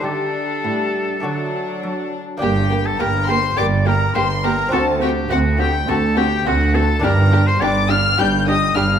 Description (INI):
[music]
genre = classical, baroque-style concerto movement with solo episodes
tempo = 104 BPM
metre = 4/4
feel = straight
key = G minor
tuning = A4 = 439 Hz
[part]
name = clear oboe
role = melody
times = 0.0-9.0 s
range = F#4 to G5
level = -22 LUFS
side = left 2 dB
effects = none
[part]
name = warm chamber violin section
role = melody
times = 0.0-9.0 s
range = F#5 to G6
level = -24 LUFS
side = left 5 dB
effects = none
[part]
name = warm studio violin section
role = second line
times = 0.0-8.8 s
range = D4 to G4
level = -26 LUFS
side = left 3 dB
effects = none
[part]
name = dark chamber viola section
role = accompaniment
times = 0.0-8.8 s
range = F#3 to D4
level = -24 LUFS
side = right 2 dB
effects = none
[part]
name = lute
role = accompaniment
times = 0.0-9.0 s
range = D2 to G4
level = -28 LUFS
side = right 1 dB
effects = none
[part]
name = warm chamber cello section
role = bass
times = 0.0-9.0 s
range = D2 to F#3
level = -22 LUFS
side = right 2 dB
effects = none
[part]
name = rich chamber double bass section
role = bass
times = 2.4-9.0 s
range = G1 to D2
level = -22 LUFS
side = right 2 dB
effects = none
[sound]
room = moderate scoring stage reverb, RT60 1.6 s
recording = none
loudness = -15 LUFS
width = side -8 dB against mid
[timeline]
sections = 0.0-2.4 A section; 2.4-9.0 B section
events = none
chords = 0.0 Dsus4; 1.2 D; 2.4 Gm; 4.7 D7; 7.0 Gm